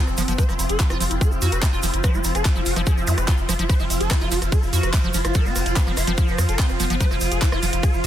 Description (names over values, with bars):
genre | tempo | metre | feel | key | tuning
psychedelic trance | 145 BPM | 4/4 | straight | unclear | A4 = 440 Hz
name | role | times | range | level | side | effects
swarming rave lead | melody | 0.0-8.1 s | C4 to C5 | -28 LUFS | equal | chorus, phaser, sidechain pumping, digital delay
overtone-sweeping drone | sustained chords | 0.0-8.1 s | F3 to F4 | -30 LUFS | right 2 dB | chorus, built-in reverb, sidechain pumping
liquid acid bass | riff | 0.0-8.1 s | F3 to Gb4 | -29 LUFS | moving between left 1 dB and right 5 dB | chorus, auto-pan, sidechain pumping, digital delay
warbly tape-like pad | texture | 0.1-8.1 s | F4 to F5 | -32 LUFS | right 1 dB | chorus, built-in reverb, sidechain pumping
round analog bass | bass | 0.1-8.1 s | F1 to F2 | -24 LUFS | equal | none
garage drum kit | drums | 0.1-8.1 s | handclaps, hi-hat, ride cymbal, rim click | -28 LUFS | right 1 dB | overdrive
egg shaker | percussion | 0.1-8.1 s | none | -33 LUFS | right 2 dB | none
electronic kick drum | drums | 0.4-7.9 s | none | -18 LUFS | equal | overdrive
zap | sound effects | 3.1-3.2 s | none | -33 LUFS | equal | none
room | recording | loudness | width
digital ambience | dense, heavily limited modern master | -18 LUFS | side -11 dB against mid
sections
0.0-8.1 A section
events
none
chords
0.0 F5